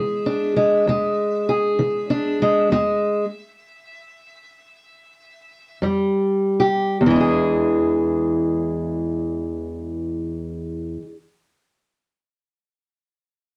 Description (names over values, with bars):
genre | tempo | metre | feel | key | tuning
acoustic country blues, solo or duo | 48-65 BPM (dotted quarters) | 12/8 | straight | E mixolydian | A4 = 440 Hz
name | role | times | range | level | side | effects
lap resonator guitar | melody | 0.0-5.8 s | E5 | -46 LUFS | equal | none
fingerpicked steel-string acoustic guitar | accompaniment | 0.0-11.2 s | E2 to G#4 | -21 LUFS | equal | none
room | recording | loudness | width
moderate small room reverb, RT60 0.5 s | dark, warm production | -21 LUFS | mono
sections
0.0-7.0 A section; 7.0-12.1 B section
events
slowing down 1.5-7.0; stop 2.7-5.8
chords
0.0 E7; 2.7 E; 5.8 Fsus2; 7.0 E7